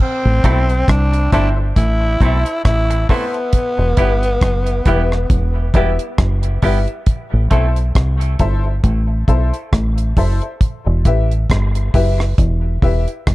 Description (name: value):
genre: dub reggae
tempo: 68 BPM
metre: 4/4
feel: swing 57% on 16ths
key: A dorian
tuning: A4 = 440 Hz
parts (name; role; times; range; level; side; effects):
- growling tenor saxophone; melody; 0.0-5.7 s; B3 to E4; -20 LUFS; equal; dub echo
- deep reggae drum kit; drums; 0.0-13.3 s; crash cymbal, hi-hat, kick drum, rim click; -16 LUFS; equal; none
- deep dub fingered electric bass; bass; 0.3-13.3 s; E1 to C2; -16 LUFS; equal; none
- semi-hollow electric guitar; accompaniment; 0.4-7.7 s; G3 to A4; -27 LUFS; right 4 dB; dub echo
- clear upright piano; stabs; 0.4-13.1 s; E4 to E5; -24 LUFS; left 4 dB; dub echo
room: studio reverb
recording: dark, warm production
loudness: -13 LUFS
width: side -18 dB against mid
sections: 0.0-13.3 A section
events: none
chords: 0.0 Am; 3.5 Em; 7.1 Am; 10.6 Em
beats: | 0.00 0.88 1.76 2.65 | 3.53 4.42 5.30 6.19 | 7.07 7.96 8.84 9.73 | 10.61 11.50 12.38 13.27